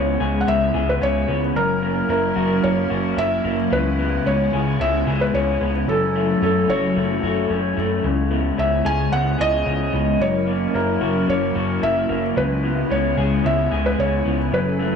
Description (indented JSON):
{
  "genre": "dream pop",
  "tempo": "111 BPM",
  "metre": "4/4",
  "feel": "straight",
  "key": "C# minor",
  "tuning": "A4 = 440 Hz",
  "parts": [
    { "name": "felt-muted upright piano", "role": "melody", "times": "0.0-15.0 s", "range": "A4 to G#5", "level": "-23 LUFS", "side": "equal", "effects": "analog delay" },
    { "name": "hollow soft pad", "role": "sustained chords", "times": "0.0-15.0 s", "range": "C#3 to A#4", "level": "-24 LUFS", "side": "left 1 dB", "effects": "ensemble chorus" },
    { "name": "electric guitar through a small old amp", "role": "arpeggios", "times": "0.0-15.0 s", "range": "F#2 to G#4", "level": "-24 LUFS", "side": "left 1 dB", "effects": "wide subtle chorus, analog delay" },
    { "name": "fat analog bass", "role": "bass", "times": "0.0-15.0 s", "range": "F#1 to C#2", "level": "-24 LUFS", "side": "left 1 dB", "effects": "none" }
  ],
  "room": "light reverb",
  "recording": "dry, gritty hardware recording, small room ambience",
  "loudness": "-18 LUFS",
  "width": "side -6 dB against mid",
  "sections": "0.0-15.0 A section",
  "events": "none",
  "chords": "0.0 C#m7; 1.6 F#7; 3.7 C#m7; 5.9 F#m7; 8.0 C#m7; 10.2 F#7; 12.4 C#m7",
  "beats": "0.47 1.01 | 1.55 2.09 2.63 3.17 | 3.71 4.25 4.79 5.34 | 5.88 6.42 6.96 7.50 | 8.04 8.58 9.12 9.66 | 10.20 10.74 11.28 11.82 | 12.36 12.90 13.44 13.98 | 14.53"
}